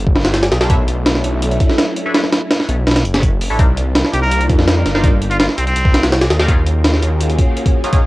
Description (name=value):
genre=drum and bass, jungle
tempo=166 BPM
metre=4/4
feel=straight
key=unclear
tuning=A4 = 437 Hz
part: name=detuned saw bass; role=bass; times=0.0-7.4 s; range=F#1 to F2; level=-17 LUFS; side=equal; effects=none
part: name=breakbeat sampler-style drum kit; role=drums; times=0.1-8.0 s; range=hi-hat, kick drum, snare drum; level=-14 LUFS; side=equal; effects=cassette tape
part: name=soft string machine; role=sustained chords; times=0.8-8.0 s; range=F#3 to Ab4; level=-23 LUFS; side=equal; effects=ensemble chorus, cassette tape
part: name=band-passed chord stab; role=stabs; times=0.6-8.0 s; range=Gb3 to F5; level=-25 LUFS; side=equal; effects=phaser, cassette tape, dub echo
part: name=trumpet with straight mute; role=melody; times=4.1-6.0 s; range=C4 to Bb4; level=-22 LUFS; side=equal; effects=cassette tape, dub echo
room=light reverb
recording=home recording on cassette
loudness=-12 LUFS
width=side -19 dB against mid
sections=0.0-8.1 A section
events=none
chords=0.0 Gm11; 0.7 Bm11; 3.6 Cm11; 6.5 Ebm11